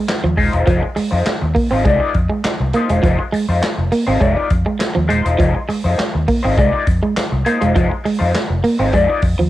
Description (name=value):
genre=funk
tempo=102 BPM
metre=4/4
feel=straight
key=F dorian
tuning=A4 = 442 Hz
part: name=electric guitar at the edge of break-up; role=riff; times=0.0-9.5 s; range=F3 to C4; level=-18 LUFS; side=right 3 dB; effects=cassette tape
part: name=electric guitar through a small old amp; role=accompaniment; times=0.1-9.4 s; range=Ab3 to D5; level=-20 LUFS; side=left 4 dB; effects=wah, cassette tape
part: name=swinging big-band drum kit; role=drums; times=0.1-9.4 s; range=handclaps, hi-hat, kick drum, snare drum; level=-20 LUFS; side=equal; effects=cassette tape
part: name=vintage muted fingered electric bass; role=bass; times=0.2-9.5 s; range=Eb1 to F2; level=-18 LUFS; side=equal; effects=none
room=small room ambience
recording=home recording on cassette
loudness=-14 LUFS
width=side -15 dB against mid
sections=0.0-9.5 A section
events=none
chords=0.0 Fm7